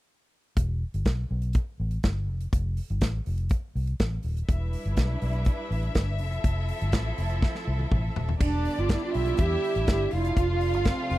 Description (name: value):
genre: disco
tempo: 122 BPM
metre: 4/4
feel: straight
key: E phrygian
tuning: A4 = 440 Hz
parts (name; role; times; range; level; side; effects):
- vintage muted fingered electric bass; bass; 0.6-11.2 s; D#1 to E2; -28 LUFS; equal; none
- modern studio drum kit; drums; 0.6-11.2 s; crash cymbal, hi-hat, kick drum, snare drum, toms; -25 LUFS; equal; none
- rich studio string section; sustained chords; 4.5-11.2 s; C3 to E5; -35 LUFS; left 1 dB; none
- mellow hollow alto flute; melody; 8.4-11.2 s; C4 to G4; -28 LUFS; right 5 dB; none
- warm symphonic violin section; second line; 8.4-11.2 s; D4 to F5; -32 LUFS; left 2 dB; none
room: small room ambience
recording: dry, close 1970s-style studio recording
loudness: -24 LUFS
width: side -16 dB against mid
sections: 0.6-8.4 A section; 8.4-11.2 B section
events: drum fill 7.4-8.4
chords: 0.6 Em; 2.3 F; 4.5 Em7; 6.2 Fmaj7; 8.4 Em7; 10.1 F